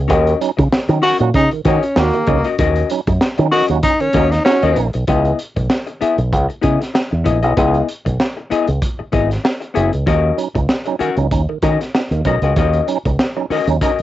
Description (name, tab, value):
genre	funk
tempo	96 BPM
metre	4/4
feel	swing 56% on 16ths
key	C# dorian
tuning	A4 = 439 Hz
part	fingered electric bass with an envelope filter	bass	0.0-14.0 s	F#1 to D#3	-16 LUFS	equal	none
part	vintage hollow-body jazz guitar	accompaniment	0.1-14.0 s	B3 to F#5	-18 LUFS	left 6 dB	cassette tape
part	tonewheel organ	stabs	0.1-4.9, 10.1-14.0 s	D#3 to D#4	-21 LUFS	right 9 dB	overdrive, fast rotary speaker, cassette tape
part	crunchy breakbeat drum kit	drums	0.1-14.0 s	hi-hat, kick drum, snare drum	-19 LUFS	equal	cassette tape
part	breathy tenor saxophone	melody	1.0-4.9 s	A#3 to F#4	-16 LUFS	left 1 dB	cassette tape
part	breathy trombone	second line	1.2-4.7 s	F#4	-22 LUFS	right 7 dB	cassette tape
room	light reverb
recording	home recording on cassette, nothing above 7.9 kHz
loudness	-14 LUFS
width	side -14 dB against mid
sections	0.0-5.1 A section; 5.1-14.0 B section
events	none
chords	0.1 D#m7; 5.1 C#m9; 10.1 D#m7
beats	| 0.10 0.72 1.34 1.97 | 2.59 3.21 3.83 4.46 | 5.08 5.70 6.33 6.95 | 7.58 8.20 8.82 9.45 | 10.07 10.70 11.32 11.94 | 12.57 13.19 13.82